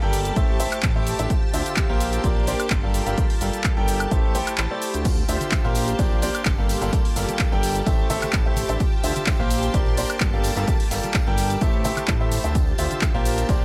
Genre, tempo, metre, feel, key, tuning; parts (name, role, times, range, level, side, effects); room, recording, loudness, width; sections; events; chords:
piano house; 128 BPM; 4/4; straight; D minor; A4 = 440 Hz
string machine, violins; sustained chords; 0.0-13.6 s; G4 to A5; -35 LUFS; equal; ensemble chorus, sidechain pumping
bright concert grand piano; riff; 0.0-13.6 s; D3 to G5; -29 LUFS; equal; sidechain pumping, digital delay
fat analog bass; bass; 0.0-13.6 s; G1 to A2; -29 LUFS; equal; sidechain pumping
rich chamber string section; texture; 0.0-13.6 s; Bb3 to E6; -37 LUFS; equal; sidechain pumping
punchy analog drum machine; drums; 0.1-13.6 s; crash cymbal, handclaps, hi-hat, shaker, woodblock; -31 LUFS; equal
electronic kick drum; drums; 0.4-13.6 s; -25 LUFS; equal
tambourine and congas; percussion; 5.0-13.6 s; -39 LUFS; equal
little or no reverb; -22 LUFS; mono
0.0-13.6 A section
break 4.6-5.1
0.4 Am7; 1.3 Dm11; 2.0 Bb69; 2.9 Gm9; 4.1 Am7; 5.1 Dm11; 5.8 Bb69; 6.7 Gm9; 7.9 Am7; 8.8 Dm11; 9.5 Bb69; 10.4 Gm9; 11.6 Am7; 12.6 Dm11